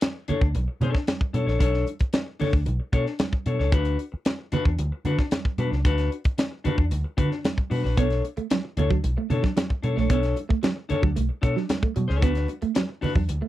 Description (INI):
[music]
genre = funk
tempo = 113 BPM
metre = 4/4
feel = straight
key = B minor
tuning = A4 = 441 Hz
[part]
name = clean electric guitar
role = accompaniment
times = 0.0-13.5 s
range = D4 to C#5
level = -29 LUFS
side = left 5 dB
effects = none
[part]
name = tight funk drum kit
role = drums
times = 0.0-13.4 s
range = hi-hat, kick drum, snare drum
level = -24 LUFS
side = equal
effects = none
[part]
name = congas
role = percussion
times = 0.0-13.4 s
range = none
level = -32 LUFS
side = right 4 dB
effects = none
[part]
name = vintage muted picked electric bass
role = bass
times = 0.3-13.4 s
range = A#1 to D3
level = -24 LUFS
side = equal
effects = none
[part]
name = clean electric guitar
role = riff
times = 8.0-13.5 s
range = F#3 to B3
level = -28 LUFS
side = right 7 dB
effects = analog chorus
[sound]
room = little or no reverb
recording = dry, close 1970s-style studio recording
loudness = -22 LUFS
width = side -14 dB against mid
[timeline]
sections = 0.0-13.5 A section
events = none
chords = 0.0 Bm9; 3.7 D6; 8.0 Bm9; 12.2 D6